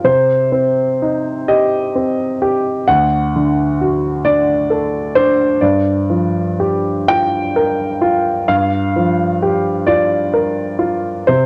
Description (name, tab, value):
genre	neoclassical minimalist piano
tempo	43 BPM (dotted quarters)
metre	6/8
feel	rubato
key	G minor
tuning	A4 = 440 Hz
part	clear grand piano	solo	0.0-11.5 s	D2 to G5	-16 LUFS	equal	cassette tape
room	moderate booth ambience, RT60 0.3 s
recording	home recording on cassette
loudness	-16 LUFS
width	mono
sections	0.0-11.5 A section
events	none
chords	0.1 Cm; 2.9 D; 5.6 Gm7